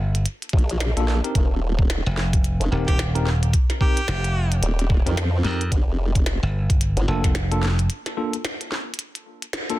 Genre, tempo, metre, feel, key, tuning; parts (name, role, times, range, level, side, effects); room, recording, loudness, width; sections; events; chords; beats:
glitch hop; 110 BPM; 4/4; swing 60% on 16ths; G minor; A4 = 440 Hz
glassy slap bass; bass; 0.0-7.9 s; Eb1 to F2; -21 LUFS; equal
glitchy drum kit; drums; 0.1-9.8 s; hi-hat, snare drum; -29 LUFS; equal; soft clipping on snare
formant-sweep wobble bass; bass; 0.5-7.1 s; Eb1 to F2; -22 LUFS; equal; chorus
electronic kick drum; drums; 0.5-7.3 s; -20 LUFS; equal
tine electric piano; stabs; 1.0-9.8 s; Bb3 to Bb4; -29 LUFS; left 1 dB; medium stereo tremolo, sidechain pumping, tape echo
warm harmonica; melody; 2.9-4.6 s; G4; -31 LUFS; equal; tape echo
little or no reverb; dense, heavily limited modern master; -19 LUFS; side -16 dB against mid
0.0-9.8 A section
break 7.9-9.8; band accent 9.5
0.0 Gm7; 1.4 F7sus4; 5.7 Gm7
0.26 0.81 | 1.35 1.90 2.44 2.99 | 3.53 4.08 4.62 5.17 | 5.71 6.26 6.81 7.35 | 7.90 8.44 8.99 9.53